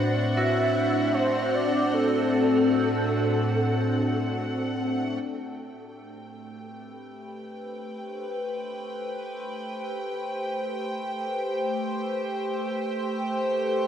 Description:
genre	ambient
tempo	free time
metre	none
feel	none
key	A dorian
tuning	A4 = 440 Hz
part	evolving wavetable pad	sustained chords	0.0-13.9 s	A2 to C5	-26 LUFS	equal	chorus, built-in reverb, phaser
part	warm chamber violin section	texture	0.0-13.9 s	F#5 to G5	-36 LUFS	equal	none
part	breathy flute-like synth lead	melody	0.3-4.4 s	A4 to E5	-28 LUFS	right 1 dB	ensemble chorus, diffuse ambient delay
part	clean electric guitar	arpeggios	0.4-1.5 s	F#4	-33 LUFS	equal	wide subtle chorus, diffuse ambient delay
room	wet lush hall reverb, RT60 2.9 s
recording	dreamy mix soaked in reverb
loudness	-24 LUFS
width	side -9 dB against mid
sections	0.0-5.2 A section; 5.2-13.9 B section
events	fade-in on ambient pad 5.2-13.9; fade-in on violin section 5.2-13.9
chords	0.0 D9/A; 5.2 Am9

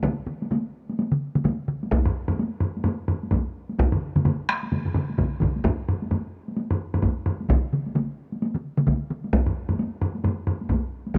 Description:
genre	japanese traditional, taiko drum ensemble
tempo	130 BPM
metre	4/4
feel	swing 60% on 16ths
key	none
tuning	none
part	solo taiko drums	percussion	0.0-11.2 s	none	-31 LUFS	equal	none
part	taiko ensemble	percussion	0.0-11.2 s	none	-28 LUFS	equal	none
part	taiko ensemble	percussion	0.0-11.2 s	none	-27 LUFS	equal	none
part	solo taiko drums	percussion	2.1-11.2 s	none	-28 LUFS	equal	none
room	studio reverb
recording	dry, close 1970s-style studio recording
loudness	-26 LUFS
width	mono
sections	0.0-11.2 A section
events	speeding up 0.0-11.2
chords	none

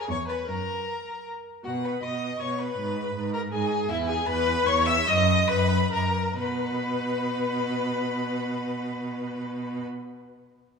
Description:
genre	quick classical-period movement for string quartet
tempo	130-163 BPM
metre	3/4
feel	rubato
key	B major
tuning	A4 = 441 Hz
part	rich violin	melody	0.0-9.8 s	E5 to E6	-30 LUFS	left 5 dB	none
part	clear violin	second line	0.0-9.8 s	E4 to E5	-33 LUFS	left 4 dB	none
part	rich viola	accompaniment	0.0-9.8 s	E4 to E5	-31 LUFS	right 1 dB	none
part	clear cello	bass	0.1-9.8 s	E2 to B2	-28 LUFS	right 1 dB	none
room	moderate concert hall reverb, RT60 1.8 s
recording	none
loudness	-24 LUFS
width	side -5 dB against mid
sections	0.0-6.4 A section; 6.4-9.1 B section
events	slowing down 3.3-6.4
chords	0.5 F#; 1.6 B; 2.8 G#m; 3.9 E5; 5.1 B/F#; 6.4 N.C.

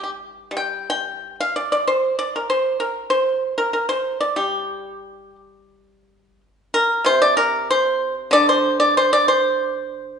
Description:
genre	chinese traditional, Chinese solo plucked strings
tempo	86-98 BPM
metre	2/4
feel	rubato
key	G yu mode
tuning	A4 = 440 Hz
part	pipa	solo	0.0-10.2 s	C3 to G5	-18 LUFS	equal	none
room	wet recital hall reverb, RT60 1.4 s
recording	recorded in a church or concert hall, nothing above 10.8 kHz, faint mains hum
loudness	-17 LUFS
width	side -6 dB against mid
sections	0.0-5.7 A section; 5.7-10.2 B section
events	none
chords	none

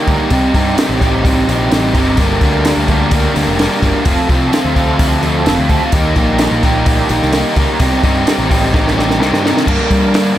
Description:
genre	indie rock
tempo	128 BPM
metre	4/4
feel	straight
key	unclear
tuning	A4 = 439 Hz
part	crunchy overdriven guitar	riff	0.0-10.4 s	F2 to Bb4	-16 LUFS	left 6 dB	spring reverb
part	crunchy overdriven guitar	riff	0.0-10.4 s	G2 to Bb4	-17 LUFS	right 6 dB	ensemble chorus
part	fuzz picked electric bass	bass	0.1-10.3 s	F1 to G3	-18 LUFS	equal	overdrive
part	compact cocktail drum kit	drums	0.1-10.3 s	crash cymbal, hi-hat, kick drum, snare drum	-16 LUFS	equal	none
part	bright tonewheel organ	sustained chords	9.7-10.4 s	Bb4 to D6	-26 LUFS	equal	none
room	moderate small room reverb, RT60 0.5 s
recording	none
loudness	-11 LUFS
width	side -12 dB against mid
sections	0.0-9.7 A section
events	drum fill 8.7-9.7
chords	0.3 Cm; 2.2 Gm; 4.1 F6; 5.9 Eb; 7.8 Cm; 9.7 Gmadd9

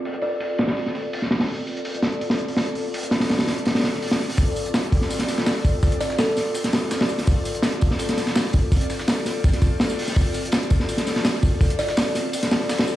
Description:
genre	drum and bass, jungle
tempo	166 BPM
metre	4/4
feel	straight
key	D minor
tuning	A4 = 444 Hz
part	airy breathy pad	sustained chords	0.0-13.0 s	C4 to D5	-28 LUFS	left 1 dB	chorus
part	crunchy breakbeat drum kit	drums	0.1-12.9 s	hi-hat, kick drum, snare drum	-21 LUFS	equal	none
part	kalimba	melody	0.2-0.4, 6.0-6.5, 11.8-12.0 s	A4 to D5	-28 LUFS	equal	vintage 12-bit sampler grit, dub echo
part	dusty soul sampler-style drum kit	drums	4.4-13.0 s	hi-hat, snare drum, tambourine	-34 LUFS	equal	high-pass filter on perc, high-pass filter on snare, high-pass filter on hats
room	moderate echo chamber reverb, RT60 1.3 s, studio ambience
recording	played on a big sound system in a bare room, large studio reverb, vinyl crackle, low-pass filter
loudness	-20 LUFS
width	side -14 dB against mid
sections	0.0-4.4 A section; 4.4-13.0 B section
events	filter sweep on analog synth pad 0.0-4.4; filter sweep 0.0-4.4; build-up 4.4-13.0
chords	0.0 Dm7

